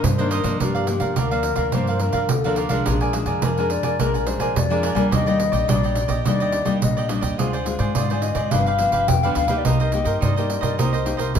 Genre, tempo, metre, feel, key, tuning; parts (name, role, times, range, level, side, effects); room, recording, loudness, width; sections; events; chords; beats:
samba and choro; 106 BPM; 4/4; straight; G minor; A4 = 439 Hz
mellow hollow concert flute; second line; 0.0-11.4 s; G4 to G5; -25 LUFS; left 6 dB
nylon-string guitar; accompaniment; 0.0-11.4 s; F2 to G4; -25 LUFS; left 2 dB
upright bass; bass; 0.0-11.4 s; G1 to Ab2; -25 LUFS; equal
pandeiro; percussion; 0.0-11.4 s; -24 LUFS; right 3 dB
cavaquinho; accompaniment; 0.2-11.4 s; D4 to Ab5; -26 LUFS; right 5 dB
moderate large studio reverb, RT60 1.1 s; minimal, uncompressed stereo recording; -18 LUFS; side -8 dB against mid
0.6-11.4 A section
0.0 Cm9; 0.6 Gm7; 2.9 Bb7; 5.1 Ebmaj7; 7.4 Dm7b5; 8.5 G7; 9.7 Cm7
0.04 | 0.60 1.17 1.73 2.30 | 2.86 3.43 3.99 4.56 | 5.12 5.69 6.26 6.82 | 7.39 7.95 8.52 9.09 | 9.65 10.22 10.78 11.35